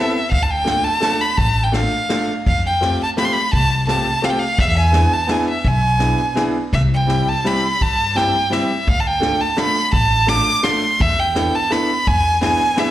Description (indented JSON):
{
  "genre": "musette waltz",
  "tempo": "169 BPM",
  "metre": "3/4",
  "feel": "rubato",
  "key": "unclear",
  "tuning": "A4 = 444 Hz",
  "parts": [
    { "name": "clear violin", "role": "melody", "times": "0.0-12.9 s", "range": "E5 to D6", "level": "-18 LUFS", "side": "right 1 dB", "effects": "slapback echo" },
    { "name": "bright upright piano", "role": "accompaniment", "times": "0.0-12.9 s", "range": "G3 to A4", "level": "-22 LUFS", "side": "equal", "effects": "slapback echo" },
    { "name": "upright bass", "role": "bass", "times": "0.3-12.5 s", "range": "A1 to G2", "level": "-20 LUFS", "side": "equal", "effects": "none" },
    { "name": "jazz brush drum kit", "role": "drums", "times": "0.3-12.9 s", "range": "kick drum, ride cymbal, snare drum", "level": "-23 LUFS", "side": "equal", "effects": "none" }
  ],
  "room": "light reverb, studio reverb",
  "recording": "live gig heard through the venue's PA, club reverb",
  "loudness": "-15 LUFS",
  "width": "side -13 dB against mid",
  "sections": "0.0-12.9 A section",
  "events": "none",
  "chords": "0.3 Dm; 2.5 Fadd9; 4.6 E7; 6.7 C; 8.9 Dm; 11.0 E7sus4; 12.1 E7",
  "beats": "| 0.32 0.67 1.02 | 1.38 1.74 2.10 | 2.46 2.82 3.17 | 3.53 3.88 4.23 | 4.58 4.93 5.28 | 5.64 6.00 6.36 | 6.72 7.08 7.45 | 7.81 8.16 8.52 | 8.87 9.22 9.57 | 9.92 10.28 10.64 | 11.00 11.36 11.71 | 12.06 12.42 12.77"
}